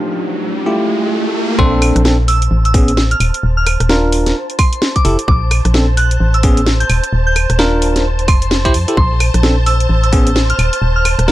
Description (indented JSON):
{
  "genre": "UK garage, two-step garage",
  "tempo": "130 BPM",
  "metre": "4/4",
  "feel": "swing 60% on 16ths",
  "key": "Bb major",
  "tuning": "A4 = 440 Hz",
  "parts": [
    { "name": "bell-like tine electric piano", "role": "stabs", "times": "0.0-11.3 s", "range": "A3 to C5", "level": "-17 LUFS", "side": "equal", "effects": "tape echo" },
    { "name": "riser", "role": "sound effects", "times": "0.0-1.6 s", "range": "none", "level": "-21 LUFS", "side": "equal", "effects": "none" },
    { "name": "soft synth bell", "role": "melody", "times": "1.6-11.1 s", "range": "C6 to G6", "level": "-20 LUFS", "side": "right 1 dB", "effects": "chorus, digital delay" },
    { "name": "soft string machine", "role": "sustained chords", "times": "1.6-11.3 s", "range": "C5 to A5", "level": "-24 LUFS", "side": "equal", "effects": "ensemble chorus, sidechain pumping" },
    { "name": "organ-like FM bass", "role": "bass", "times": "1.6-11.3 s", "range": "Eb1 to F2", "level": "-14 LUFS", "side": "equal", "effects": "sidechain pumping" },
    { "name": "electronic kick drum", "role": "drums", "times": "1.6-10.2 s", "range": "none", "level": "-13 LUFS", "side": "equal", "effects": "none" },
    { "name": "garage drum kit", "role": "drums", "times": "1.8-11.3 s", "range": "claves, hi-hat, rim click, snare drum", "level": "-18 LUFS", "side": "equal", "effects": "none" }
  ],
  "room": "little or no reverb",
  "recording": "dark, warm production",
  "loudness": "-11 LUFS",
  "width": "side -15 dB against mid",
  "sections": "0.0-1.6 A section; 1.6-11.3 B section",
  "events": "break 0.0-1.6; riser 0.0-1.6; filter sweep on tine electric piano 0.0-1.6; drop 1.6-11.3",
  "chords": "0.0 Ebmaj9; 0.7 Fmaj9; 1.6 Bbmaj9; 2.5 Amaj9; 3.2 Ebsus2; 4.4 Fmaj9; 5.3 Bbmaj9; 6.2 Amaj9; 6.9 Ebsus2; 8.0 Fmaj9; 9.0 Bbmaj9; 9.9 Amaj9; 10.6 Ebsus2",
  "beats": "0.20 0.66 1.13 | 1.59 2.05 2.51 2.97 | 3.43 3.90 4.36 4.82 | 5.28 5.74 6.20 6.66 | 7.13 7.59 8.05 8.51 | 8.97 9.43 9.89 10.36 | 10.82 11.28"
}